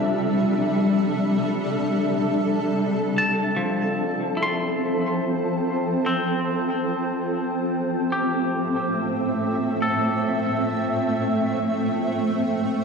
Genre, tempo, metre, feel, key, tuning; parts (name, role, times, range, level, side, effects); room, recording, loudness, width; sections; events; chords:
ambient; free time; F major; A4 = 440 Hz
shimmering ambient pad; sustained chords; 0.0-12.8 s; A2 to E5; -22 LUFS; equal; chorus, built-in reverb
analog drone; drone; 0.0-12.8 s; F3 to A4; -36 LUFS; equal
glass harmonica; texture; 2.8-12.8 s; G5; -39 LUFS; right 1 dB
twangy electric guitar; arpeggios; 3.2-12.2 s; F3 to C6; -27 LUFS; equal; spring reverb, dub echo
wet echo chamber reverb, RT60 2.2 s; echo-heavy mix, cassette tape; -21 LUFS; side -5 dB against mid
0.0-2.7 A section; 2.7-12.8 B section
0.0 C6; 2.7 F; 7.8 Am